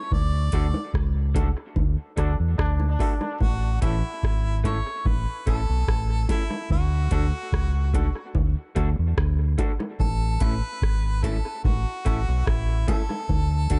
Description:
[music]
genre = roots reggae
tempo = 73 BPM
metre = 4/4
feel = straight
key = A major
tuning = A4 = 442 Hz
[part]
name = clear harmonica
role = melody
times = 0.0-13.8 s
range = E4 to D5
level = -35 LUFS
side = equal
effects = tape echo
[part]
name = deep dub fingered electric bass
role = bass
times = 0.1-13.8 s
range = G#1 to E2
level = -26 LUFS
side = equal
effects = none
[part]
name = booming analog drum machine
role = drums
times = 0.1-13.8 s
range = hi-hat, kick drum, rim click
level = -27 LUFS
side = equal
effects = none
[part]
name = bongos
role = percussion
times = 0.1-13.5 s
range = none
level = -36 LUFS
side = equal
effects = none
[part]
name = electric guitar through a small old amp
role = accompaniment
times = 0.5-13.8 s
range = A3 to A4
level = -37 LUFS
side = equal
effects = tape echo
[part]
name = brilliant trombone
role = second line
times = 2.2-3.4 s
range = D4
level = -36 LUFS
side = equal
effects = tape echo
[sound]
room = small room ambience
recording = echo-heavy mix, nothing above 10.8 kHz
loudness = -24 LUFS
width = mono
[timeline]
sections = 0.0-13.8 A section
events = band accent 0.1-3.4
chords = 0.1 D; 3.4 A; 6.7 D; 10.0 A; 13.3 D

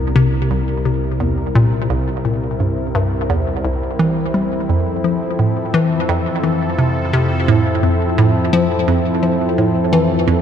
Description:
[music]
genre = ambient, sequencer-driven space music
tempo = 86 BPM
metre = 4/4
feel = straight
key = F major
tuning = A4 = 437 Hz
[part]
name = sweeping resonant pad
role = sustained chords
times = 0.0-10.4 s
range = F3 to Bb4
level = -21 LUFS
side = left 1 dB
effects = chorus
[part]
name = analog drone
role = bass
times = 0.0-10.4 s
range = C2 to F2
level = -22 LUFS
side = right 1 dB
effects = chorus
[part]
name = hollow square pluck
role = riff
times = 0.2-10.4 s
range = C2 to G3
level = -16 LUFS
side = equal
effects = chorus, tape echo
[sound]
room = wet cathedral reverb, RT60 5.1 s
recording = in a vast, echoing space, cassette tape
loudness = -14 LUFS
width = side -8 dB against mid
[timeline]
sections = 0.0-10.4 A section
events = none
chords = 0.0 C7; 4.7 Fmaj7

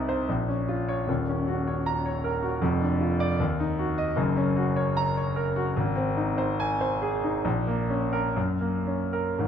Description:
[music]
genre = classical, romantic character piece for solo piano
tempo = 55-79 BPM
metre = 2/4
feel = rubato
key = unclear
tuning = A4 = 439 Hz
[part]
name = clear concert grand piano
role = solo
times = 0.0-9.5 s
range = Eb1 to Bb5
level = -24 LUFS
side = equal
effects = none
[sound]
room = wet recital hall reverb, RT60 1.3 s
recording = none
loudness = -24 LUFS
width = side -8 dB against mid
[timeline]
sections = 0.0-9.5 A section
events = none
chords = 0.3 Bbm; 1.1 Ebm7; 2.6 Dm/F; 3.4 Ebm; 4.2 Gb; 5.8 Ab; 7.5 Bbm; 8.4 Gb

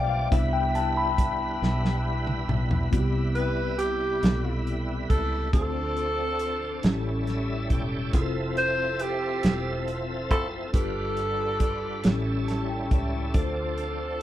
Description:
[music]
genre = slow gospel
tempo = 46 BPM (dotted quarters)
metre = 6/8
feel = straight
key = C major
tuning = A4 = 440 Hz
[part]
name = mellow tine electric piano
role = accompaniment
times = 0.0-14.2 s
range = G2 to B5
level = -30 LUFS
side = left 3 dB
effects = medium stereo tremolo
[part]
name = bright tonewheel organ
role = sustained chords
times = 0.0-14.2 s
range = F3 to G5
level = -34 LUFS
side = right 2 dB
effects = slow rotary speaker, overdrive, chorus vibrato
[part]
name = fingered electric bass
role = bass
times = 0.0-14.2 s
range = E1 to D2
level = -30 LUFS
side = equal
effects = none
[part]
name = warm soul drum kit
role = drums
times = 0.3-14.0 s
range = hi-hat, kick drum, snare drum, toms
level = -25 LUFS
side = equal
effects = none
[part]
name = breathy alto saxophone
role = melody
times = 3.4-14.2 s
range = G4 to C5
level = -28 LUFS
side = right 1 dB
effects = none
[sound]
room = moderate large studio reverb, RT60 0.9 s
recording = band playing live in one room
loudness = -24 LUFS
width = side -13 dB against mid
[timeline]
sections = 0.0-2.9 A section; 2.9-14.2 B section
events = tine electric piano solo 0.0-2.9; drum fill 1.6-2.9; tonewheel organ fill 6.8-8.1; tine electric piano fill 12.0-13.3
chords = 0.3 Cmaj7; 5.5 Dm7; 6.8 A7; 8.1 Fmaj7; 10.7 G7; 12.0 A7; 13.3 Dm7

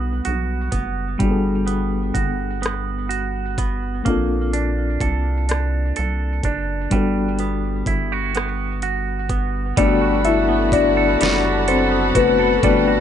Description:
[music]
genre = slow six-eight R&B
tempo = 42 BPM (dotted quarters)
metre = 6/8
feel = straight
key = G major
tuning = A4 = 440 Hz
[part]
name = clean electric guitar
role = second line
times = 0.0-13.0 s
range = G3 to A4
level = -24 LUFS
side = right 7 dB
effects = spring reverb, tape echo
[part]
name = mellow reed electric piano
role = accompaniment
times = 0.0-13.0 s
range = G3 to E5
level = -21 LUFS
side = left 5 dB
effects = fast tremolo
[part]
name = rubbery square bass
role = bass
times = 0.0-13.0 s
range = F#1 to C2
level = -24 LUFS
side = equal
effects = none
[part]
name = smooth R&B drum kit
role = drums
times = 0.2-12.9 s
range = hi-hat, kick drum, rim click, snare drum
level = -23 LUFS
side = equal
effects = none
[part]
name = muted studio string section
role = sustained chords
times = 9.8-13.0 s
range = A4 to B5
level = -26 LUFS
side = left 2 dB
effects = none
[part]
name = mellow horn section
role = stabs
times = 9.8-13.0 s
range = D3 to F#4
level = -24 LUFS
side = right 2 dB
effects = none
[sound]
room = light reverb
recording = nothing above 10.7 kHz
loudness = -17 LUFS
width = side -9 dB against mid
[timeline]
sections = 0.0-9.8 A section; 9.8-13.0 B section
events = reed electric piano solo 9.8-13.0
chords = 0.0 Gmaj9; 4.1 Bbmaj9; 6.9 Gmaj9

